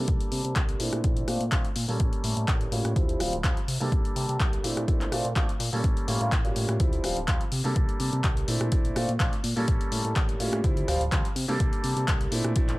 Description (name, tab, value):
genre	filtered disco house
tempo	125 BPM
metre	4/4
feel	swing 54% on 16ths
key	unclear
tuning	A4 = 440 Hz
part	clear baby grand piano	accompaniment	0.0-12.8 s	F3 to A4	-30 LUFS	right 1 dB	phaser, sidechain pumping, low-pass filter
part	fat analog bass	bass	0.0-12.8 s	D1 to C3	-30 LUFS	equal	tube saturation, sidechain pumping, low-pass filter
part	electronic kick drum	drums	0.1-12.7 s	none	-26 LUFS	equal	none
part	punchy analog drum machine	drums	0.1-12.8 s	handclaps, hi-hat, rim click	-32 LUFS	left 1 dB	sidechain pumping on hats, sidechain pumping on cymbals
room	little or no reverb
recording	none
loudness	-24 LUFS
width	side -20 dB against mid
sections	0.0-12.8 A section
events	filter sweep 0.0-12.8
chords	0.0 C5; 0.8 Bbmaj9#11; 2.0 A7b9b13; 3.0 Dm11; 3.7 C5; 4.6 Bbmaj9#11; 5.8 A7b9b13; 6.8 Dm11; 7.5 C5; 8.5 Bbmaj9#11; 9.7 A7b9b13; 10.6 Dm11; 11.4 C5